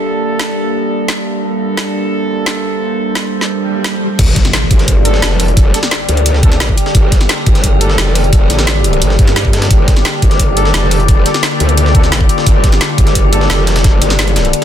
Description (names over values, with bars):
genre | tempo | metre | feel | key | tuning
dark technical drum and bass | 174 BPM | 4/4 | straight | G minor | A4 = 440 Hz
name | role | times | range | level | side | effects
metallic inharmonic drone | sustained chords | 0.0-14.6 s | D3 to C5 | -19 LUFS | equal | chorus, built-in reverb, sidechain pumping
warm brass ensemble | stabs | 0.0-8.2, 10.6-13.7 s | G3 to A4 | -21 LUFS | right 3 dB | ping-pong delay
deep dark ambient pad | texture | 0.0-14.6 s | G4 to D5 | -20 LUFS | left 2 dB | chorus, built-in reverb, sidechain pumping
drum and bass drum kit | drums | 0.4-14.6 s | crash cymbal, hi-hat, snare drum | -17 LUFS | equal | overdrive, studio ambience
swell and impact | sound effects | 3.6-5.6 s | none | -19 LUFS | left 1 dB | none
growl bass | bass | 4.2-14.5 s | F1 to G2 | -14 LUFS | equal | chorus, overdrive
breakbeat sampler-style drum kit | drums | 4.2-14.6 s | hi-hat, snare drum | -23 LUFS | equal | high-pass filter on hats, studio ambience, high-pass filter on snare
electronic kick drum | drums | 4.2-13.9 s | none | -10 LUFS | equal | overdrive, studio ambience
room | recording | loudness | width
digital ambience | dense, heavily limited modern master | -9 LUFS | side -10 dB against mid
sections
0.0-4.2 A section; 4.2-14.6 B section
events
filter sweep on brass ensemble 0.0-4.2; swell 3.6-4.2; drop 4.2-14.6; impact 4.2-5.6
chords
0.0 Gmadd9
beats
| 0.05 0.40 0.74 1.08 | 1.43 1.77 2.12 2.46 | 2.81 3.15 3.50 3.84 | 4.19 4.53 4.88 5.22 | 5.57 5.91 6.26 6.60 | 6.95 7.29 7.64 7.98 | 8.33 8.67 9.02 9.36 | 9.71 10.05 10.40 10.74 | 11.09 11.43 11.78 12.12 | 12.46 12.81 13.15 13.50 | 13.84 14.19 14.53